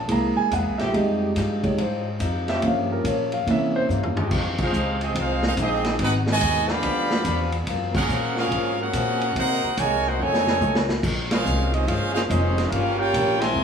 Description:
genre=jazz, big band swing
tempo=143 BPM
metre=4/4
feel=swing 66% on 8ths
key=F minor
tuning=A4 = 441 Hz
part: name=warm concert grand piano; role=accompaniment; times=0.0-4.1 s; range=E3 to Bb5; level=-22 LUFS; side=right 1 dB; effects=none
part: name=upright bass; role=bass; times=0.0-13.6 s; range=F1 to C3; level=-27 LUFS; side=equal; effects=none
part: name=picked swing-style acoustic guitar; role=accompaniment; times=0.1-13.6 s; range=F2 to G#4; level=-32 LUFS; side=left 7 dB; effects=none
part: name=vintage drum kit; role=drums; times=0.1-13.6 s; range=crash cymbal, hi-hat, kick drum, ride cymbal, snare drum, toms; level=-29 LUFS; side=equal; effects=none
part: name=bright trombone section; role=sustained chords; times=0.8-4.7 s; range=F3 to G4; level=-31 LUFS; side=left 1 dB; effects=none
part: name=bright trumpet section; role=melody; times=4.6-13.6 s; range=C4 to C6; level=-24 LUFS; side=right 2 dB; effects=none
part: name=warm trombone section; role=second line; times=4.6-13.6 s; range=Cb3 to G4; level=-28 LUFS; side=right 1 dB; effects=none
room=moderate large studio reverb, RT60 1.2 s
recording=small room ambience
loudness=-20 LUFS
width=side -7 dB against mid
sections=0.0-4.3 A section; 4.3-13.6 B section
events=grand piano solo 0.0-4.3; drum fill 3.9-4.3, 10.2-11.0; band accent 4.5, 7.9, 11.2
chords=0.1 C7alt; 0.9 Fm9; 2.6 Gm7b5; 3.5 C7b9; 4.3 Fm9; 6.0 Abm7; 6.8 G7#11; 7.7 Gbmaj9#11; 9.4 Cm7b5; 10.2 F7alt; 11.0 Bbm11; 12.7 Gm7b5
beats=0.10 0.52 | 0.94 1.36 1.78 2.21 | 2.63 3.05 3.47 3.89 | 4.31 4.73 5.15 5.58 | 6.00 6.42 6.83 7.25 | 7.67 8.10 8.51 8.93 | 9.35 9.77 10.19 10.61 | 11.03 11.45 11.87 12.29 | 12.71 13.13 13.55

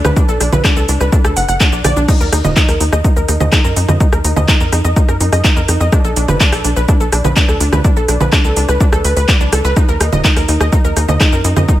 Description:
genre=melodic techno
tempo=125 BPM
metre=4/4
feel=straight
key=unclear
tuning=A4 = 437 Hz
part: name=wide unison pluck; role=arpeggios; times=0.0-11.8 s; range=D4 to F#5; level=-18 LUFS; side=equal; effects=sidechain pumping, tape echo
part: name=tight sequencer bass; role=bass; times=0.0-11.7 s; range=Eb1 to Gb2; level=-15 LUFS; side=equal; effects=sidechain pumping
part: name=house drum kit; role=drums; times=0.0-11.8 s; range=congas, crash cymbal, handclaps, hi-hat, rim click, shaker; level=-16 LUFS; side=right 1 dB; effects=sidechain pumping on perc, small room ambience, sidechain pumping on hats, sidechain pumping on cymbals
part: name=electronic kick drum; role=drums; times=0.2-11.8 s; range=none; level=-12 LUFS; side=equal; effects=small room ambience
room=digital ambience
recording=none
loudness=-10 LUFS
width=side -14 dB against mid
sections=0.0-11.8 A section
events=none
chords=0.0 Bm; 2.1 Ebm; 5.9 Bm7; 9.8 Ebm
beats=| 0.17 0.65 1.12 1.60 | 2.08 2.56 3.04 3.52 | 4.00 4.49 4.96 5.45 | 5.92 6.41 6.88 7.37 | 7.84 8.32 8.80 9.29 | 9.77 10.24 10.72 11.21 | 11.69

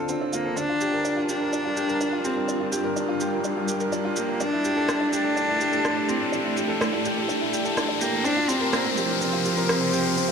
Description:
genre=piano and strings electronica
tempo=125 BPM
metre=4/4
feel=straight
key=unclear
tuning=A4 = 441 Hz
part: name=granular cloud pad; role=sustained chords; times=0.0-10.3 s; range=C3 to D5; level=-30 LUFS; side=equal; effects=built-in reverb
part: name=clear upright piano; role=riff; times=0.0-10.3 s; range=C4 to Bb4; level=-27 LUFS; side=right 1 dB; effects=ping-pong delay
part: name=riser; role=sound effects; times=1.1-10.3 s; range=none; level=-31 LUFS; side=left 4 dB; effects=none
part: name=electronic shaker and rim click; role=drums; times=0.1-10.3 s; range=none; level=-32 LUFS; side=right 1 dB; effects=studio reverb
part: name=warm cello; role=melody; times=0.3-10.3 s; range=F3 to D4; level=-26 LUFS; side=equal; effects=none
room=moderate huge ambient reverb, RT60 4.3 s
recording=none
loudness=-22 LUFS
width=side -6 dB against mid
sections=0.0-10.3 A section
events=build-up 0.0-10.3; filter sweep on ambient pad 0.0-10.3; riser 1.1-10.3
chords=0.0 Dm7; 0.6 Gm7; 4.4 A7sus4; 8.2 C7sus4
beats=0.09 | 0.57 1.05 1.53 2.01 | 2.49 2.97 3.45 3.93 | 4.41 4.89 5.37 5.85 | 6.33 6.81 7.29 7.77 | 8.25 8.73 9.21 9.69 | 10.17

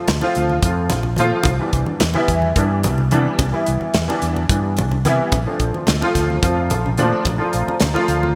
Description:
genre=electric jazz fusion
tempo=217 BPM (eighths)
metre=7/8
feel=straight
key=Bb major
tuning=A4 = 440 Hz
part: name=clear concert grand piano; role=accompaniment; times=0.0-8.3 s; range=E3 to F4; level=-22 LUFS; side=equal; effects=ensemble chorus
part: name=fretless electric bass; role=bass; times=0.1-8.3 s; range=Bb1 to C3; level=-23 LUFS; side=equal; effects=none
part: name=modern studio drum kit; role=drums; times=0.1-8.2 s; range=hi-hat, kick drum, snare drum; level=-24 LUFS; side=equal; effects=none
part: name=congas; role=percussion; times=0.1-8.4 s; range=none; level=-28 LUFS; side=equal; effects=none
part: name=deep dark ambient pad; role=sustained chords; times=6.7-8.4 s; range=A3 to Bb5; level=-32 LUFS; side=equal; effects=chorus, built-in reverb
room=moderate lush hall reverb, RT60 1.9 s, small room ambience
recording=bright 1980s-style digital production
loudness=-18 LUFS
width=mono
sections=0.0-8.4 A section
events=none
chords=0.0 Bbmaj9; 1.5 Cmaj9; 5.3 Bbmaj9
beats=0.08 0.36 0.63 0.91 1.19 | 1.46 1.74 2.01 2.29 2.56 2.84 3.12 | 3.39 3.67 3.94 4.22 4.50 4.77 5.05 | 5.33 5.60 5.88 6.15 6.43 6.71 6.98 | 7.26 7.53 7.81 8.08

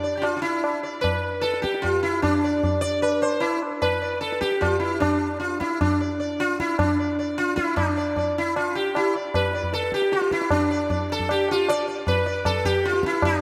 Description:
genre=indian classical, Hindustani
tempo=152 BPM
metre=7/4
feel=straight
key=D raga kafi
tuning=A4 = 439 Hz
part: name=sitar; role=melody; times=0.0-13.4 s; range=D4 to D5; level=-25 LUFS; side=equal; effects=analog delay
part: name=tabla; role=percussion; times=0.2-13.4 s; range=none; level=-30 LUFS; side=equal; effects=none
room=wet plate reverb, RT60 3.1 s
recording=dreamy mix soaked in reverb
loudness=-23 LUFS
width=mono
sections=0.0-7.8 A section; 7.8-13.4 B section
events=speeding up 0.0-13.4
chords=none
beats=0.23 0.64 1.04 1.44 1.83 | 2.23 2.63 3.03 3.43 3.83 4.22 4.62 | 5.01 5.41 5.81 6.20 6.59 6.99 7.38 | 7.78 8.17 8.56 8.95 9.34 9.73 10.12 | 10.51 10.90 11.29 11.68 12.07 12.46 12.84 | 13.23

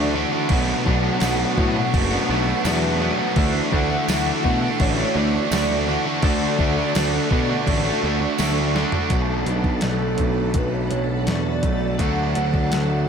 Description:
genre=rock, shoegaze and dream pop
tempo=84 BPM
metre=4/4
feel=straight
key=D major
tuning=A4 = 439 Hz
part: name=pure sine lead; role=melody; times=0.0-13.1 s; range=A4 to F#5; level=-29 LUFS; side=right 1 dB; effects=chorus, tremolo, tape echo
part: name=string machine, violins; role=sustained chords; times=0.0-13.1 s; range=D4 to C#6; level=-32 LUFS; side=left 1 dB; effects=ensemble chorus
part: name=clean electric guitar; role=arpeggios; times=0.0-13.1 s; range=E3 to F#4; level=-32 LUFS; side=left 10 dB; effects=wide subtle chorus, tape echo
part: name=distorted electric guitar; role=riff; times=0.0-9.1 s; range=B2 to D4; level=-28 LUFS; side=right 1 dB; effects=overdrive
part: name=overdriven electric guitar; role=riff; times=0.0-13.1 s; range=B2 to F#4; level=-25 LUFS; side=right 9 dB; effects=reverse reverb
part: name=overdriven semi-hollow guitar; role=riff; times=0.0-13.1 s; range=B2 to F#4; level=-27 LUFS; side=left 10 dB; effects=lush chorus
part: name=fuzz picked electric bass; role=bass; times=0.0-13.1 s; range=F#1 to B2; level=-24 LUFS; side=equal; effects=overdrive
part: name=crisp 8-bit digital drum machine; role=drums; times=0.5-12.9 s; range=crash cymbal, hi-hat, kick drum, snare drum, toms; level=-25 LUFS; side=equal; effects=none
part: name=tambourine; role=percussion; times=1.2-8.6 s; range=none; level=-35 LUFS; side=right 13 dB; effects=none
room=moderate plate reverb, RT60 2.0 s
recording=dreamy mix soaked in reverb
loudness=-18 LUFS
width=side -7 dB against mid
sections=0.0-9.1 A section; 9.1-13.1 B section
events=drum fill 8.8-9.1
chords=0.0 Dmaj9; 0.5 Bm7; 3.4 Dmaj9; 6.2 Dmaj7; 9.1 Bm7; 12.0 D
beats=| 0.51 1.22 1.94 2.65 | 3.37 4.09 4.80 5.52 | 6.24 6.95 7.67 8.39 | 9.11 9.83 10.55 11.27 | 11.99 12.72

